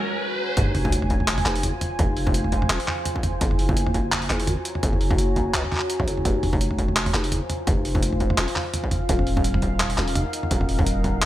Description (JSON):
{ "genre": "half-time drum and bass", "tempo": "169 BPM", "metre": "4/4", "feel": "swing 56% on 16ths, half-time", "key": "F phrygian", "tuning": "A4 = 439 Hz", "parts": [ { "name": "deep dark ambient pad", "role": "sustained chords", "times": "0.0-11.3 s", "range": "Eb4 to Bb5", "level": "-29 LUFS", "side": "equal", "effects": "chorus, built-in reverb, sidechain pumping" }, { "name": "riser and sub drop", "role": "sound effects", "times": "0.0-2.0 s", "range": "none", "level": "-28 LUFS", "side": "equal", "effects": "none" }, { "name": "growling 808-style bass", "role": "bass", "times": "0.6-11.2 s", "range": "Eb1 to Db2", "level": "-25 LUFS", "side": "equal", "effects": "none" }, { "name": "boom bap sampler-style drum kit", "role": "drums", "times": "0.6-11.3 s", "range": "handclaps, hi-hat, toms", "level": "-25 LUFS", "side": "right 1 dB", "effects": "studio reverb" }, { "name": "electronic kick drum", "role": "drums", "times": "0.6-11.1 s", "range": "none", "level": "-25 LUFS", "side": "equal", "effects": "distortion, studio reverb" } ], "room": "light reverb, digital ambience", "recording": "bright 1980s-style digital production", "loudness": "-20 LUFS", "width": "side -14 dB against mid", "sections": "0.6-11.3 A section", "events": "break 0.0-0.6; riser 0.0-0.6; drop 0.6-11.3; impact 0.6-2.0", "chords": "0.0 Gb; 0.6 Fm; 3.4 Gb; 6.3 Fm" }